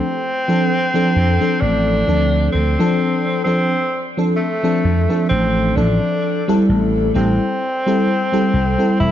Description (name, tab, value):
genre	vaporwave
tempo	65 BPM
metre	4/4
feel	swing 55% on 16ths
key	D minor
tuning	A4 = 440 Hz
part	warm tenor saxophone	melody	0.0-9.1 s	A3 to E4	-20 LUFS	equal	vintage 12-bit sampler grit, tape echo
part	FM electric piano with soft pad layer	accompaniment	0.0-9.1 s	F3 to A4	-17 LUFS	left 1 dB	analog chorus, cassette tape
part	vintage slap bass	bass	1.2-9.1 s	E1 to F2	-18 LUFS	equal	tube saturation
room	light reverb, small room ambience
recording	dark, warm production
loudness	-14 LUFS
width	side -11 dB against mid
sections	0.0-9.1 A section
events	none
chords	0.0 Dm7; 6.7 Am7